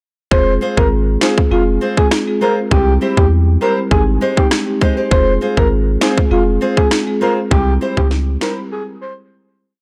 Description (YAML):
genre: dancehall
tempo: 100 BPM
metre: 4/4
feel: straight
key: F minor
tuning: A4 = 443 Hz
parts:
  - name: breathy flute-like synth lead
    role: melody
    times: 0.3-9.1 s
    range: F4 to C5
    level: -22 LUFS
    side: equal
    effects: chorus, tape echo
  - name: marimba with soft mallets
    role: accompaniment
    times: 0.3-8.6 s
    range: G3 to Ab4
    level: -22 LUFS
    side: equal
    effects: none
  - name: punchy sub bass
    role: bass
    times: 0.3-8.4 s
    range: F1 to E2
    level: -18 LUFS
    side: equal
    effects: none
  - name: island pop drum kit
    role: drums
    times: 0.3-8.6 s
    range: kick drum, rim click, snare drum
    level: -18 LUFS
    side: equal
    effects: overdrive, vintage 12-bit sampler grit
  - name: nylon-string guitar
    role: arpeggios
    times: 0.6-8.6 s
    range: Ab3 to C5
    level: -22 LUFS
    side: equal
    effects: none
room: studio ambience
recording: none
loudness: -15 LUFS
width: mono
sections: 0.3-9.8 verse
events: fade-out 7.5-9.8; break 8.7-9.8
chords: 0.3 Fm; 2.7 C; 3.9 Abmaj7; 5.1 Fm; 7.5 C; 8.7 N.C.